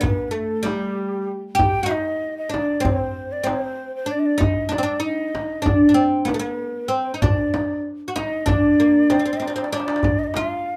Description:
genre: Turkish makam ensemble.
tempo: 192 BPM (eighths).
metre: 9/8.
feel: straight.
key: D makam hicaz.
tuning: A4 = 440 Hz.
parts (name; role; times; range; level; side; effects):
oud; melody; 0.0-10.8 s; G3 to G4; -23 LUFS; equal; none.
breathy ney; second line; 0.0-10.8 s; G4 to G5; -29 LUFS; equal; none.
darbuka; percussion; 0.0-10.7 s; none; -29 LUFS; equal; none.
frame drum; percussion; 0.0-10.5 s; none; -29 LUFS; equal; none.
room: moderate small room ambience, RT60 0.5 s.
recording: none.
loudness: -21 LUFS.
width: mono.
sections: 0.0-10.0 A section.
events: drum fill 9.4-10.0.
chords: none.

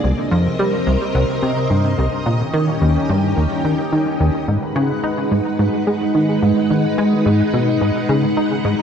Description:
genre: ambient, sequencer-driven space music.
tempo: 108 BPM.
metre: 4/4.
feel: straight.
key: G# minor from 4.5 s.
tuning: A4 = 443 Hz.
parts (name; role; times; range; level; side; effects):
string machine, full ensemble; sustained chords; 0.0-8.8 s; C3 to F#5; -19 LUFS; equal; phaser, ensemble chorus.
plucky analog bass; riff; 0.0-8.7 s; C2 to D#4; -17 LUFS; equal; analog chorus, analog delay.
room: wet plate reverb, RT60 2.7 s.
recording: dark, warm production.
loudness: -15 LUFS.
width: side -7 dB against mid.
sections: 0.0-4.5 A section; 4.5-8.8 B section.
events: none.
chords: 0.0 Cm7; 2.3 Eb7; 4.5 G#m7.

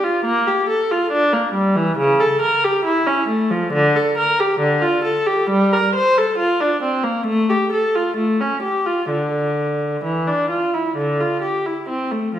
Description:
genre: classical, baroque-style suite movement for unaccompanied viola.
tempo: 63-70 BPM.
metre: 4/4.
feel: rubato.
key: D minor.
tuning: A4 = 438 Hz.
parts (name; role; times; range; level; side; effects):
warm viola; solo; 0.0-12.4 s; C#3 to C5; -16 LUFS; equal; none.
room: wet recital hall reverb, RT60 1.4 s.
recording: recorded in a church or concert hall.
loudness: -16 LUFS.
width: side -10 dB against mid.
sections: 0.0-12.4 A section.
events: none.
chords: none.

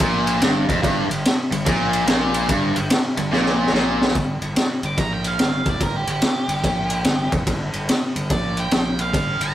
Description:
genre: blues rock power trio and southern rock.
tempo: 145 BPM.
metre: 4/4.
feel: swing 65% on 8ths.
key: unclear.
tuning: A4 = 440 Hz.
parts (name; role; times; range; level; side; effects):
cranked stack guitar; riff; 0.0-4.1 s; F2 to Bb2; -21 LUFS; equal; overdrive.
fuzz fingered electric bass; bass; 0.0-9.5 s; F1 to Bb1; -26 LUFS; equal; overdrive.
raw garage drum kit; drums; 0.0-9.5 s; kick drum, ride cymbal, snare drum; -20 LUFS; equal; none.
octave-fuzz lead guitar; melody; 4.9-9.5 s; G4 to D6; -25 LUFS; right 2 dB; distortion.
room: light reverb.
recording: rough rehearsal-room recording, warm saturation.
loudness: -18 LUFS.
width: side -12 dB against mid.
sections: 0.0-4.1 A section; 4.1-9.5 B section.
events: drum fill 3.3-4.1; lead electric guitar solo 4.1-9.5.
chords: 0.0 Fsus4 (rootless).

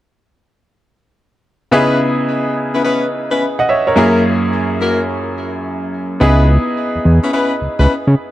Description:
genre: R&B.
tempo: 107 BPM.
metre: 4/4.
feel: swing 65% on 16ths.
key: C# dorian.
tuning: A4 = 440 Hz.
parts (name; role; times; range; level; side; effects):
bright grand piano; accompaniment; 1.7-8.3 s; F#2 to F#5; -15 LUFS; right 1 dB; none.
mellow horn section; stabs; 1.7-7.9 s; A#3 to B4; -18 LUFS; left 2 dB; digital delay.
fat analog bass; bass; 6.2-8.2 s; C#2 to C#3; -10 LUFS; equal; none.
room: light reverb.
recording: dark, warm production.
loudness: -13 LUFS.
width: side -14 dB against mid.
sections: 1.7-8.3 A section.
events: none.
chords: 1.7 C#m7; 4.0 F#7; 6.2 C#m7.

